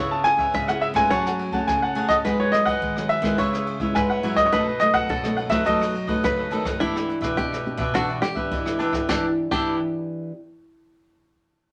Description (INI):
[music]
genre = samba and choro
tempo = 105 BPM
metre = 4/4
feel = straight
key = E minor from 6.8 s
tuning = A4 = 441 Hz
[part]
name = bluegrass banjo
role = second line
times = 0.0-9.8 s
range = E4 to E5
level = -30 LUFS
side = equal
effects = none
[part]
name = cavaquinho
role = accompaniment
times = 0.0-9.8 s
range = D4 to A5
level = -31 LUFS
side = equal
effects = none
[part]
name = nylon-string guitar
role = accompaniment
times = 0.0-10.3 s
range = F#2 to G#4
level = -31 LUFS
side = equal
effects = none
[part]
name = nylon-string guitar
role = bass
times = 0.0-9.8 s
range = G#2 to G#3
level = -32 LUFS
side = equal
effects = none
[part]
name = clear baby grand piano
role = melody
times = 0.1-6.5 s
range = C#5 to A5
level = -24 LUFS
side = equal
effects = none
[part]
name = jazz brush drum kit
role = drums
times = 0.2-9.7 s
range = crash cymbal, hi-hat, kick drum, ride cymbal, rim click, snare drum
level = -34 LUFS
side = equal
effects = none
[sound]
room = moderate studio reverb, RT60 0.6 s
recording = none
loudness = -23 LUFS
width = mono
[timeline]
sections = 0.0-6.8 A section; 6.8-9.1 B section; 9.1-11.4 C section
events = none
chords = 0.0 C#m7; 1.1 F#madd9; 2.2 G#m7; 3.4 C#m7; 4.5 B7; 6.8 Em7